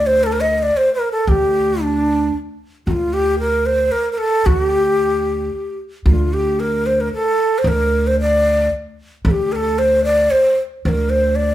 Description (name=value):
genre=Arabic maqam ensemble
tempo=113 BPM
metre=3/4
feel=straight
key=D minor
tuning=A4 = 440 Hz
part: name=breathy ney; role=melody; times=0.0-11.5 s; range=D4 to Eb5+22c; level=-16 LUFS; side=equal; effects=none
part: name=upright bass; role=bass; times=0.0-11.5 s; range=D2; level=-19 LUFS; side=equal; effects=none
room=moderate large studio reverb, RT60 0.8 s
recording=band playing live in one room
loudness=-15 LUFS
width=side -13 dB against mid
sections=0.0-2.9 A section; 2.9-11.5 B section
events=none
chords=none